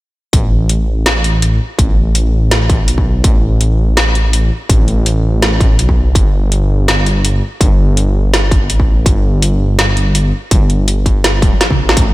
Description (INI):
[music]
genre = half-time drum and bass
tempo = 165 BPM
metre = 4/4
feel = swing 56% on 16ths, half-time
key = unclear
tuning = A4 = 440 Hz
[part]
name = dark detuned saw bass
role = bass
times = 0.3-12.1 s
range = D1 to B1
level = -12 LUFS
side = equal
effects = none
[part]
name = drum and bass drum kit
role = drums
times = 0.3-12.1 s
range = hi-hat, snare drum, toms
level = -15 LUFS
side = equal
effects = none
[part]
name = electronic kick drum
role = drums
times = 0.3-12.1 s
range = none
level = -12 LUFS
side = equal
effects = distortion, overdrive
[sound]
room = little or no reverb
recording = none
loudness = -10 LUFS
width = side -18 dB against mid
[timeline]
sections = 0.3-12.1 A section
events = drum fill 11.4-12.0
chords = none